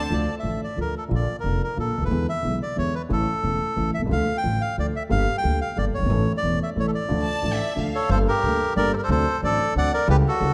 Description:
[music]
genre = tango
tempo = 180 BPM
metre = 3/4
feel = rubato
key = D harmonic minor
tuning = A4 = 440 Hz
[part]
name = bandoneon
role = melody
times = 0.0-10.5 s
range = F#4 to G5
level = -28 LUFS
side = equal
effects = none
[part]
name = rich chamber violin section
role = second line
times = 0.0-0.1, 7.2-8.1 s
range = E5 to A5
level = -35 LUFS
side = equal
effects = none
[part]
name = warm concert grand piano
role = accompaniment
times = 0.0-10.5 s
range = E1 to A4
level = -28 LUFS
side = equal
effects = none
[part]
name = upright bass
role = bass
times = 0.0-10.5 s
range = E1 to E2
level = -28 LUFS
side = equal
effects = none
[sound]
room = moderate concert hall reverb, RT60 1.9 s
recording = none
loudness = -23 LUFS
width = mono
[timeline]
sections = 0.1-8.1 A section; 8.1-10.5 B section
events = none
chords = 0.1 Dm; 1.1 Bb; 2.1 E7; 3.1 A; 4.1 Dm; 5.1 Gm; 6.1 A; 7.1 Dm; 8.1 Gmadd9; 9.1 D7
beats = | 0.10 0.44 0.77 | 1.11 1.44 1.77 | 2.10 2.44 2.77 | 3.10 3.43 3.77 | 4.10 4.44 4.77 | 5.11 5.44 5.77 | 6.10 6.43 6.76 | 7.10 7.43 7.76 | 8.10 8.43 8.76 | 9.09 9.42 9.75 | 10.07 10.40

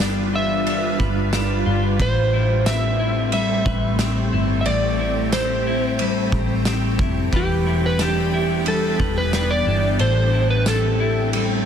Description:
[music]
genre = dream pop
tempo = 90 BPM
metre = 4/4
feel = straight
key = A minor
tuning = A4 = 440 Hz
[part]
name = granular cloud pad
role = sustained chords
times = 0.0-11.7 s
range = E3 to B4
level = -26 LUFS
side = right 1 dB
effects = built-in reverb
[part]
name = clean electric guitar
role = arpeggios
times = 0.0-11.7 s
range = A2 to B4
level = -22 LUFS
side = left 3 dB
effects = wide subtle chorus, digital delay
[part]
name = vintage muted fingered electric bass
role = bass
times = 0.0-11.6 s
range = E1 to A1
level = -25 LUFS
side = equal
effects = none
[part]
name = loose indie drum kit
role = drums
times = 0.0-11.5 s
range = kick drum, ride cymbal, snare drum, tambourine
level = -26 LUFS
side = right 1 dB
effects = none
[part]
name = electric slide guitar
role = melody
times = 0.4-11.3 s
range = G4 to E5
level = -24 LUFS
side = right 1 dB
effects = digital delay
[sound]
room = moderate concert hall reverb, RT60 2.2 s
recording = dense, heavily limited modern master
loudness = -17 LUFS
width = side -8 dB against mid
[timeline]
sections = 0.0-11.7 A section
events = none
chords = 0.0 G7; 2.0 Am9; 7.3 Em7; 10.0 Am7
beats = 0.00 0.66 1.33 | 2.00 2.66 3.33 4.00 | 4.66 5.33 6.00 6.66 | 7.33 8.00 8.66 9.33 | 10.00 10.66 11.33

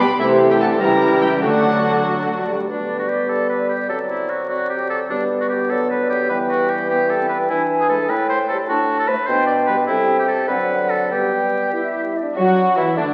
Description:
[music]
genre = quick classical-period movement for symphony orchestra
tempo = 99 BPM (dotted quarters)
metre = 6/8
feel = straight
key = G major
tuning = A4 = 440 Hz
[part]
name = warm chamber violin section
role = melody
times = 0.0-2.4, 12.4-13.1 s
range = D4 to B5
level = -27 LUFS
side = equal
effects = none
[part]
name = clear oboe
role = second line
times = 0.0-13.1 s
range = D4 to D5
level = -26 LUFS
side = equal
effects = none
[part]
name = dark clarinet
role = second line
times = 0.0-13.1 s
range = B3 to A4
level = -32 LUFS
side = equal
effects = none
[part]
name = mellow concert flute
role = second line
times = 0.0-13.1 s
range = C5 to A5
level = -26 LUFS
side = equal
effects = none
[part]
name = warm studio violin section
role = second line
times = 0.0-2.5, 12.4-13.1 s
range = C4 to G4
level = -26 LUFS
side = equal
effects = none
[part]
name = dark bassoon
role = accompaniment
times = 0.0-13.1 s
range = A2 to A3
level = -26 LUFS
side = equal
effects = none
[part]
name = dark chamber viola section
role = accompaniment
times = 0.0-2.5, 12.4-13.1 s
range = E3 to F#4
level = -25 LUFS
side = equal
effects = none
[part]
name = warm French horn section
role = sustained chords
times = 0.0-13.1 s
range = D3 to C5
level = -25 LUFS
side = equal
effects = none
[part]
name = dark chamber cello section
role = bass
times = 0.0-2.5, 12.4-13.1 s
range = B2 to F#3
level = -28 LUFS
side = equal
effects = none
[part]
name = warm chamber double bass section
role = bass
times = 0.0-2.5, 12.4-13.1 s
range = B1 to F#2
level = -36 LUFS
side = equal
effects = none
[sound]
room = wet scoring stage reverb, RT60 1.7 s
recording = very old 78 rpm record, vinyl crackle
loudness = -19 LUFS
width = mono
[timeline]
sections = 0.0-2.7 A section; 2.7-12.4 A section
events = none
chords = 0.2 Am7/C; 0.8 C#dim7; 1.4 D; 2.7 G/D; 3.9 D7; 5.1 G/D; 6.3 Em; 7.5 E7; 8.1 A7(no3); 8.7 D/A; 9.3 G/B; 9.9 Am7/C; 10.5 D7; 11.1 G; 12.4 Esus2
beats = | 0.20 0.81 | 1.43 2.06 | 2.68 3.29 | 3.90 4.50 | 5.10 5.71 | 6.30 6.90 | 7.50 8.10 | 8.69 9.28 | 9.88 10.49 | 11.11 11.74 | 12.37 12.97

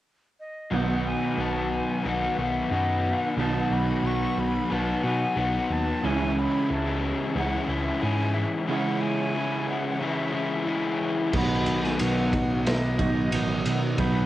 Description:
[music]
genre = rock, shoegaze and dream pop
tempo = 90 BPM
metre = 4/4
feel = straight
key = B major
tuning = A4 = 440 Hz
[part]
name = breathy bright jazz flute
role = melody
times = 0.4-14.3 s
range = D#5 to C#6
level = -34 LUFS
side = right 1 dB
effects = cassette tape, tape echo
[part]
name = string machine, violas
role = sustained chords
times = 0.7-14.3 s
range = D#3 to D#6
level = -40 LUFS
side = right 1 dB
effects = none
[part]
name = crunchy overdriven guitar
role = riff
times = 0.7-14.3 s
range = B2 to F#4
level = -27 LUFS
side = left 3 dB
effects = lush chorus, cassette tape
[part]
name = mellow electric guitar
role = riff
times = 0.7-14.3 s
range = B2 to E4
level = -30 LUFS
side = right 5 dB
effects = reverse reverb, cassette tape
[part]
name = tine electric piano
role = bass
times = 0.7-14.3 s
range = A1 to B2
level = -30 LUFS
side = equal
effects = none
[part]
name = twelve-string electric guitar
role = arpeggios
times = 6.0-14.3 s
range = D#3 to F#4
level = -36 LUFS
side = right 2 dB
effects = none
[part]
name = raw garage drum kit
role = drums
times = 11.3-14.1 s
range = crash cymbal, kick drum, ride cymbal, snare drum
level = -28 LUFS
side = equal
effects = none
[sound]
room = small room reverb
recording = home recording on cassette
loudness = -23 LUFS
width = side -14 dB against mid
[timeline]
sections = 0.7-11.3 A section; 11.3-14.3 B section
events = none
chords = 0.0 N.C.; 0.7 B; 6.0 C#m; 11.3 B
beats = 0.05 | 0.72 1.38 2.05 2.71 | 3.38 4.04 4.71 5.37 | 6.03 6.70 7.36 8.02 | 8.69 9.35 10.01 10.67 | 11.34 12.00 12.66 13.32 | 13.98

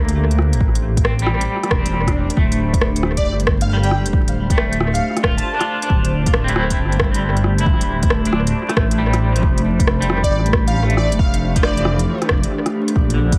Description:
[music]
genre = future garage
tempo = 136 BPM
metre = 4/4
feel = swing 66% on 16ths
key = D minor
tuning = A4 = 440 Hz
[part]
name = electric guitar at the edge of break-up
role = accompaniment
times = 0.0-13.4 s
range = D3 to F4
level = -26 LUFS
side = equal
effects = tremolo, sidechain pumping, dub echo
[part]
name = warbly tape-like pad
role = sustained chords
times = 0.1-13.4 s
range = A3 to C5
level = -27 LUFS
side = equal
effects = chorus, built-in reverb, phaser, sidechain pumping
[part]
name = dark detuned saw bass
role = bass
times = 0.0-13.4 s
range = D1 to D2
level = -22 LUFS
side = equal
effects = tube saturation, sidechain pumping
[part]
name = organic electronic drum kit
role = drums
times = 0.1-13.4 s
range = hi-hat, rim click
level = -25 LUFS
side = equal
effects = overdrive, studio ambience, tape echo
[part]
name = electronic kick drum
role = drums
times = 0.6-13.4 s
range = none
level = -21 LUFS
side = equal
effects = overdrive, studio ambience
[part]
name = swell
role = sound effects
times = 1.7-2.4 s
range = none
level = -33 LUFS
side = equal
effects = none
[part]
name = plucky unison lead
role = melody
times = 3.2-6.0, 10.2-12.3 s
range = D5 to A5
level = -29 LUFS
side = equal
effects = lush chorus, vintage 12-bit sampler grit, dub echo
[sound]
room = light reverb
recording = echo-heavy mix, vinyl crackle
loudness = -17 LUFS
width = mono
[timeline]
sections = 0.0-2.4 A section; 2.4-13.4 B section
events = filter sweep on clean electric guitar 0.0-2.4; swell 1.7-2.4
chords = 0.0 Bbmaj7; 0.6 Asus4; 2.4 Dm7; 9.4 Fmaj7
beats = 0.16 | 0.60 1.04 1.49 1.93 | 2.37 2.81 3.25 3.69 | 4.13 4.57 5.01 5.46 | 5.90 6.34 6.78 7.22 | 7.66 8.10 8.54 8.99 | 9.43 9.87 10.31 10.75 | 11.19 11.63 12.07 12.52 | 12.96

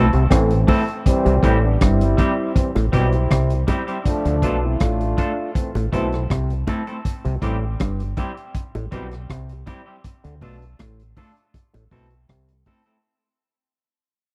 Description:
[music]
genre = roots reggae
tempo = 80 BPM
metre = 4/4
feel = straight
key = C major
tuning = A4 = 438 Hz
[part]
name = clean electric guitar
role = accompaniment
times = 0.0-13.0 s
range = G3 to A4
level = -28 LUFS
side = equal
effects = spring reverb, tape echo
[part]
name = auto-wah clav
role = riff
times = 0.0-12.5 s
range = G2 to D3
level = -28 LUFS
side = equal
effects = overdrive
[part]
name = deep dub fingered electric bass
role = bass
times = 0.0-12.6 s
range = G1 to D2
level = -23 LUFS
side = equal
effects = none
[part]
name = crunchy breakbeat drum kit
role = drums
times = 0.1-13.0 s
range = hi-hat, kick drum, rim click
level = -23 LUFS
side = equal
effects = none
[part]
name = warm trombone section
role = second line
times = 0.3-6.2 s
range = E3 to C5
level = -26 LUFS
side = equal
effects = tape echo
[part]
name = bongos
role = percussion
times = 0.7-12.9 s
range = none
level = -27 LUFS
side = equal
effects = none
[sound]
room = studio reverb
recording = dry, close 1970s-style studio recording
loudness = -20 LUFS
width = mono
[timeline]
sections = 0.0-1.1 A section; 1.1-13.0 B section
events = band accent 0.0-1.1; fade-out 1.1-13.0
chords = 0.0 Am; 1.1 C; 4.0 Dm; 5.5 Am; 7.0 C; 10.0 Dm; 11.5 Am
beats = 0.30 | 1.05 1.80 2.55 3.30 | 4.05 4.80 5.54 6.29 | 7.04 7.79 8.54 9.29 | 10.04 10.79 11.54 12.29

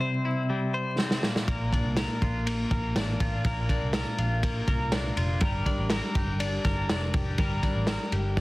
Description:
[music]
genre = jangly indie pop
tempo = 122 BPM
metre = 4/4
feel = straight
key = unclear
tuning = A4 = 435 Hz
[part]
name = twelve-string electric guitar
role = arpeggios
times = 0.0-8.4 s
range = Bb2 to C5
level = -29 LUFS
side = left 1 dB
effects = harmonic tremolo, analog delay
[part]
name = vintage drum kit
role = drums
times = 1.0-8.4 s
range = kick drum, ride cymbal, snare drum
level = -28 LUFS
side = equal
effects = none
[part]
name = vintage muted picked electric bass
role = bass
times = 1.5-8.4 s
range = F1 to C2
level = -30 LUFS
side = equal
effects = none
[sound]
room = studio reverb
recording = dense, heavily limited modern master, vinyl crackle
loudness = -25 LUFS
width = side -20 dB against mid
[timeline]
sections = 0.0-8.4 A section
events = drum fill 1.0-1.5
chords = 0.0 C; 1.2 Bb; 5.4 Gm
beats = 0.00 0.49 0.98 | 1.48 1.97 2.46 2.95 | 3.45 3.94 4.43 4.92 | 5.42 5.91 6.40 6.89 | 7.38 7.88 8.37

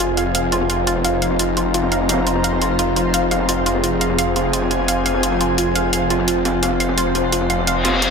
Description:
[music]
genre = dark technical drum and bass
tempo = 172 BPM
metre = 4/4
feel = straight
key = F minor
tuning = A4 = 440 Hz
[part]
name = metallic inharmonic drone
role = sustained chords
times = 0.0-8.1 s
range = F3 to C5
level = -22 LUFS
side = left 2 dB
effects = chorus, built-in reverb
[part]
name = analog pluck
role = arpeggios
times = 0.0-8.1 s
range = F4 to F5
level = -24 LUFS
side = right 2 dB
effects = chorus, ping-pong delay
[part]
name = snarling distorted saw bass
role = bass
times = 0.0-8.1 s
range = F1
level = -23 LUFS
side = equal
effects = distortion, overdrive
[part]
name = breakbeat sampler-style drum kit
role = drums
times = 0.0-8.1 s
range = ride cymbal, snare drum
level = -31 LUFS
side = equal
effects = none
[part]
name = electronic hi-hat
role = drums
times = 0.0-8.1 s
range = none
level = -22 LUFS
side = equal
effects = overdrive
[part]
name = granular cloud pad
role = texture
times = 0.0-8.1 s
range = F4 to C6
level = -22 LUFS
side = equal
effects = built-in reverb
[part]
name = reverse cymbal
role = sound effects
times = 7.7-8.1 s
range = none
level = -19 LUFS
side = left 4 dB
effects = none
[sound]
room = moderate digital room reverb, RT60 1.4 s, digital ambience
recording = none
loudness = -16 LUFS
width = side -5 dB against mid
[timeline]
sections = 0.0-8.1 A section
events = filter sweep on synth drone 0.0-8.1; reverse cymbal 7.7-8.1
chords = 0.0 Fm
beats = | 0.00 0.35 0.70 1.04 | 1.39 1.74 2.09 2.44 | 2.79 3.14 3.49 3.84 | 4.18 4.53 4.88 5.23 | 5.58 5.93 6.28 6.63 | 6.98 7.33 7.67 8.02

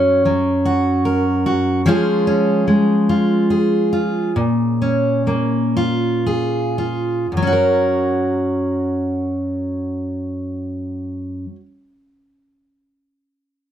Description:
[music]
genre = folk, solo fingerstyle acoustic guitar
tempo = 36-50 BPM (dotted quarters)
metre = 6/8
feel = straight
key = F# major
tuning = A4 = 440 Hz
[part]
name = fingerpicked steel-string acoustic guitar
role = solo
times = 0.0-11.7 s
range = F#2 to A#4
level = -16 LUFS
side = equal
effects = none
[sound]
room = moderate studio reverb, RT60 0.6 s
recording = none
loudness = -16 LUFS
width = side -10 dB against mid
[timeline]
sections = 0.0-7.3 A section; 7.3-10.7 B section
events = slowing down 1.9-7.3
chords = 0.0 F#; 1.9 C#/E#; 4.4 A#m7; 7.3 F#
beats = 0.65 | 1.85 3.08 | 4.36 5.76 | 7.33 9.00

